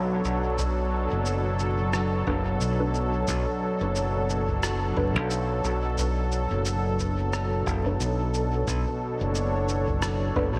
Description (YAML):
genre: ambient dub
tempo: 89 BPM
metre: 4/4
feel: swing 58% on 16ths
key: B minor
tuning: A4 = 440 Hz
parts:
  - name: warm analog pad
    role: sustained chords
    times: 0.0-10.6 s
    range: B2 to C#5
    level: -30 LUFS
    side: equal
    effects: chorus, tremolo
  - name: filtered dub chord stab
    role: stabs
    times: 0.0-10.6 s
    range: D4 to B4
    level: -36 LUFS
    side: equal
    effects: none
  - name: modern bright fingered electric bass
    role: bass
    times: 0.0-10.6 s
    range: F#1 to B1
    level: -30 LUFS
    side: equal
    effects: none
  - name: electronic shaker and rim click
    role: drums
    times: 0.2-10.2 s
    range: none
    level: -37 LUFS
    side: equal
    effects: dub echo
  - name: electronic kick drum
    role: drums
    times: 0.6-10.5 s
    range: none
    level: -36 LUFS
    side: equal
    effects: none
room: moderate lush hall reverb, RT60 2.8 s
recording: dreamy mix soaked in reverb, vinyl crackle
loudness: -26 LUFS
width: mono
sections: 0.0-8.7 A section; 8.7-10.6 B section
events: none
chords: 0.0 Bm7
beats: | 0.59 1.26 1.94 2.61 | 3.28 3.96 4.63 5.31 | 5.98 6.65 7.33 8.00 | 8.68 9.35 10.03